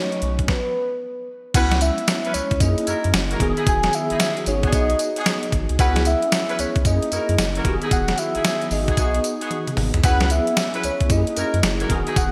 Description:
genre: R&B, new jack swing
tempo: 113 BPM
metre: 4/4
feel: swing 64% on 16ths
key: C# minor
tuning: A4 = 441 Hz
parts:
  - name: soft octave-layered synth lead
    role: melody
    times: 0.0-12.3 s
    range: B4 to G#5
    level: -27 LUFS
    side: equal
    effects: chorus
  - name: bell-like tine electric piano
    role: accompaniment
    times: 0.0-12.3 s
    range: D#3 to G#4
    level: -29 LUFS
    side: equal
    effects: ensemble chorus
  - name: clean 12-bit digital drum machine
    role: drums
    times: 0.1-12.3 s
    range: crash cymbal, hi-hat, kick drum, snare drum, tambourine, toms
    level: -24 LUFS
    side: equal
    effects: overdrive, gated reverb
  - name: round analog bass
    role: bass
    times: 0.2-12.3 s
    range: E1 to F#2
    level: -25 LUFS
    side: equal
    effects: none
  - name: warm horn section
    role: stabs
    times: 1.5-12.2 s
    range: B3 to B4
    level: -32 LUFS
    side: equal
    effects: none
room: moderate lush hall reverb, RT60 1.9 s, digital ambience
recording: bright 1980s-style digital production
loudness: -21 LUFS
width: mono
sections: 0.0-1.5 A section; 1.5-12.3 B section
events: stop 0.5-1.5; drum fill 9.5-10.0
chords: 0.0 B7; 1.5 C#m7; 2.6 F#7; 3.4 Emaj7; 4.5 G#m7; 5.8 C#m7; 6.9 F#7; 7.6 Emaj7; 8.7 G#m7; 10.0 C#m7; 11.1 F#7

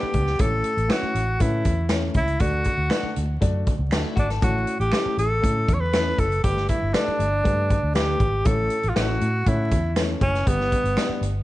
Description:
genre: uptempo 1960s-style soul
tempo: 119 BPM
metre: 4/4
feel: straight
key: A mixolydian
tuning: A4 = 441 Hz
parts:
  - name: breathy tenor saxophone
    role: melody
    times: 0.0-11.2 s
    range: B3 to C#5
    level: -25 LUFS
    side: equal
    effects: none
  - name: warm upright piano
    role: accompaniment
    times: 0.0-11.3 s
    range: G2 to D5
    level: -30 LUFS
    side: left 2 dB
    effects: none
  - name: clean electric guitar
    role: riff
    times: 0.0-0.4, 3.9-4.5 s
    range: B3 to A4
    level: -35 LUFS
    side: left 6 dB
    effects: none
  - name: vintage muted fingered electric bass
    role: bass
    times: 0.0-11.4 s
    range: F#1 to A2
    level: -25 LUFS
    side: equal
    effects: none
  - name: swinging big-band drum kit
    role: drums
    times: 0.1-11.3 s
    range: hi-hat, kick drum, snare drum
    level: -24 LUFS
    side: equal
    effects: none
  - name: finger snap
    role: percussion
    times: 0.9-11.1 s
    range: none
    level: -38 LUFS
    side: right 6 dB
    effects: none
room: light reverb, studio reverb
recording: dark, warm production, vinyl crackle, nothing above 10.3 kHz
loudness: -20 LUFS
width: side -16 dB against mid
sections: 0.0-11.4 A section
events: none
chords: 0.4 A; 2.4 D; 4.4 A; 6.4 Gadd9; 8.4 A; 10.5 G

